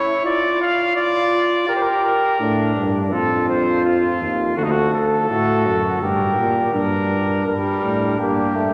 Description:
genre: classical, imitative canzona for brass ensemble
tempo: 83 BPM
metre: 4/4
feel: straight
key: G minor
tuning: A4 = 440 Hz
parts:
  - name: clear trumpet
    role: melody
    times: 0.0-8.7 s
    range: Eb4 to F5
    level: -24 LUFS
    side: equal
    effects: none
  - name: mellow flugelhorn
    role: second line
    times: 0.0-8.7 s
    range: D4 to A4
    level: -23 LUFS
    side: equal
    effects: none
  - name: mellow bass trombone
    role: bass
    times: 2.4-8.7 s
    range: D2 to Bb2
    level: -24 LUFS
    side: equal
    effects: none
  - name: bright trombone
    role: accompaniment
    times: 7.5-8.7 s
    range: G3 to Bb3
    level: -24 LUFS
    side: equal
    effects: none
room: wet church reverb, RT60 4.1 s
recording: none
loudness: -19 LUFS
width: mono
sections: 0.0-7.5 A section; 7.5-8.7 B section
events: none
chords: 0.2 Dm/F; 1.7 Gm; 3.1 F; 4.6 D; 6.0 Gm

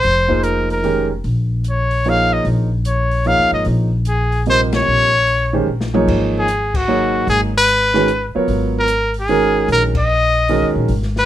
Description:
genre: modal jazz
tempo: 149 BPM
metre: 3/4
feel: swing 66% on 8ths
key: G# dorian from 6.1 s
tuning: A4 = 440 Hz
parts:
  - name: bright trumpet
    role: melody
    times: 0.0-11.3 s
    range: F#4 to F5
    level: -16 LUFS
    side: left 1 dB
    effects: none
  - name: upright bass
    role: bass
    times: 0.0-11.3 s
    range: F1 to D#2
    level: -19 LUFS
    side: left 1 dB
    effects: none
  - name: open jazz drum kit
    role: drums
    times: 0.0-11.3 s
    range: crash cymbal, hi-hat, kick drum, ride cymbal, snare drum, toms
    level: -26 LUFS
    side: left 2 dB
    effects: none
  - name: warm concert grand piano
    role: accompaniment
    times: 0.3-10.9 s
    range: C3 to Eb5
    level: -18 LUFS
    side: right 3 dB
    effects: none
room: light reverb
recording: minimal, uncompressed stereo recording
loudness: -14 LUFS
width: side -12 dB against mid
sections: 0.0-6.1 A section; 6.1-11.3 B section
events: band accent 4.7, 6.7, 9.9; drum fill 5.7-6.1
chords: 0.0 Bbm9; 1.2 Dbadd9; 6.1 G#m7

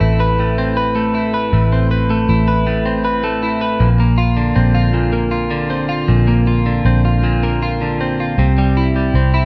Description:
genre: six-eight pop ballad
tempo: 52 BPM (dotted quarters)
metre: 6/8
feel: straight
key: unclear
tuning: A4 = 440 Hz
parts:
  - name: twelve-string electric guitar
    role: accompaniment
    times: 0.0-9.5 s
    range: A2 to B4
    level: -19 LUFS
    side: equal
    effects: none
  - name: vintage muted fingered electric bass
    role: bass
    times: 0.0-9.5 s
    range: A1 to C2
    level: -18 LUFS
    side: equal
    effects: none
room: light reverb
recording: worn, warbling old tape, cassette tape, warbly pitch drift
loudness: -16 LUFS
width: mono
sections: 0.0-9.5 A section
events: none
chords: 0.0 Amadd9; 3.8 Bbadd9; 8.4 C

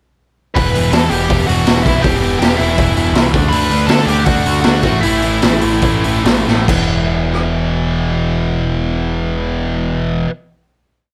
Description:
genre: punk rock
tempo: 136-162 BPM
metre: 4/4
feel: straight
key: E minor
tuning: A4 = 440 Hz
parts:
  - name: bluesy overdriven lead guitar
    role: melody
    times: 0.5-6.2 s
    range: E4 to B5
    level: -20 LUFS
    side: equal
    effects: distortion
  - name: overdriven semi-hollow guitar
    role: riff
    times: 0.6-10.3 s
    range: E2 to D4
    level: -23 LUFS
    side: equal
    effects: none
  - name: tight distorted guitar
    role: riff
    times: 0.6-10.3 s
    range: E2 to D4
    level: -22 LUFS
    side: equal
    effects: distortion
  - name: growling picked electric bass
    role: bass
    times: 0.6-10.3 s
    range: E1 to D3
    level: -21 LUFS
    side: equal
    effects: overdrive
  - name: raw garage drum kit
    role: drums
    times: 0.6-7.4 s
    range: crash cymbal, hi-hat, kick drum, rim click, snare drum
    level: -18 LUFS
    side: equal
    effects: none
room: light reverb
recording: none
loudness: -15 LUFS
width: mono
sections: 0.6-6.7 verse; 6.7-10.2 final chord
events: slowing down 3.5-6.7; drum fill 6.5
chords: 0.6 Em; 3.3 D; 4.8 A5; 6.7 E5

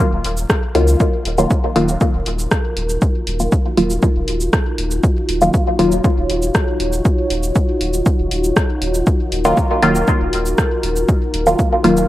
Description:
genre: dub techno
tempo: 119 BPM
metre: 4/4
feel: straight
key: Eb minor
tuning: A4 = 438 Hz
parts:
  - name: warm sub bass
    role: bass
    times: 0.1-12.0 s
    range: Eb1 to Db2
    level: -21 LUFS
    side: equal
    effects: sidechain pumping
  - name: deep house drum kit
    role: drums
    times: 0.2-12.1 s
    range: cabasa, hi-hat, rim click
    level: -24 LUFS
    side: equal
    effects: none
  - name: electronic kick drum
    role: drums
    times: 0.5-11.7 s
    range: none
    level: -16 LUFS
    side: equal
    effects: overdrive
  - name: filtered dub chord stab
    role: stabs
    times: 0.7-5.9, 9.4-12.1 s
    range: Eb3 to F4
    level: -16 LUFS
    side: equal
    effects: chorus, phaser, sidechain pumping, dub echo
  - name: dark analog pad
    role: sustained chords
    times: 2.2-12.1 s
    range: Eb4 to Db5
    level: -22 LUFS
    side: equal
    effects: chorus, sidechain pumping
room: light reverb, digital ambience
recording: vinyl crackle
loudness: -14 LUFS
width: side -15 dB against mid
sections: 0.0-12.1 A section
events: none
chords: 0.0 Ebmadd9

